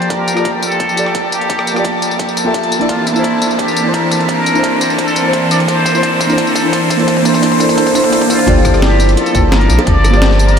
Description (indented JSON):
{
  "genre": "liquid drum and bass",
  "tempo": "172 BPM",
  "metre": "4/4",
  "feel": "straight",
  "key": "G dorian",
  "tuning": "A4 = 443 Hz",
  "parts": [
    { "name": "trumpet with plunger mute", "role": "melody", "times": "0.0-10.6 s", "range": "E4 to D5", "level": "-19 LUFS", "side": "equal", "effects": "analog delay" },
    { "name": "dark chamber string section", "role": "sustained chords", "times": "0.0-10.6 s", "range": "E3 to A5", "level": "-18 LUFS", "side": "equal", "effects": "sidechain pumping" },
    { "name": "breakbeat sampler-style drum kit", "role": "drums", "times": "0.0-10.6 s", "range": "hi-hat, rim click, snare drum, tambourine", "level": "-21 LUFS", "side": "left 1 dB", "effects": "high-pass filter on hats, high-pass filter on perc, high-pass filter on snare" },
    { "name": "riser", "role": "sound effects", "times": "0.0-8.5 s", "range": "none", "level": "-24 LUFS", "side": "right 1 dB", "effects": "none" },
    { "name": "electronic kick drum", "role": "drums", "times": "0.1-9.9 s", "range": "none", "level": "-20 LUFS", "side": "equal", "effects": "high-pass filter on kick, high-pass filter on room" },
    { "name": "deep mellow chord stab", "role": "accompaniment", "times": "0.3-10.6 s", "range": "Bb3 to A5", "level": "-15 LUFS", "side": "equal", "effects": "analog chorus, analog delay" },
    { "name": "saturated sub bass", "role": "bass", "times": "8.5-10.6 s", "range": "G1 to Bb1", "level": "-11 LUFS", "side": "equal", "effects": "none" },
    { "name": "bongos", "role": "percussion", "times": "9.8-10.1 s", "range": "none", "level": "-24 LUFS", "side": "equal", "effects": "none" }
  ],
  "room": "wet huge ambient reverb, RT60 7.8 s",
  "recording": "dreamy mix soaked in reverb",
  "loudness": "-10 LUFS",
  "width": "side -7 dB against mid",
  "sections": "0.0-8.5 A section; 8.5-10.6 B section",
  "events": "build-up 0.0-8.5; riser 0.0-8.5; drum fill 2.9-8.5; drop 8.5-10.6",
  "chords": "0.0 Gm9; 2.9 C13; 8.5 Gm9"
}